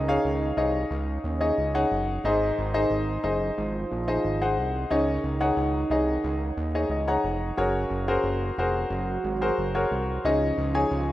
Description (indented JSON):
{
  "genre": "piano-driven pop",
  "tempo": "90 BPM",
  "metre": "4/4",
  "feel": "straight",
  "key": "Db major",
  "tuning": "A4 = 440 Hz",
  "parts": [
    { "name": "dark French horn section", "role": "second line", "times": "0.0-11.1 s", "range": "Db3 to Gb4", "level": "-33 LUFS", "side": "right 3 dB", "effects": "ping-pong delay" },
    { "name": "clear concert grand piano", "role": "accompaniment", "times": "0.0-11.1 s", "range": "Ab2 to Bb5", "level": "-25 LUFS", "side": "left 1 dB", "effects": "none" },
    { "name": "fat analog bass", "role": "bass", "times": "0.0-11.1 s", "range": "F1 to Eb2", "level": "-29 LUFS", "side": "right 1 dB", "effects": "none" }
  ],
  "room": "light reverb, studio reverb",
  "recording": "rough home demo mix",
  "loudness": "-23 LUFS",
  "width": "side -14 dB against mid",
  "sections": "0.0-11.1 A section",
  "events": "grand piano fill 6.6-7.6",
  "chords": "0.0 Dbsus2; 2.2 Ab; 4.9 Dbsus2; 7.6 Gbadd9; 10.2 Dbsus2"
}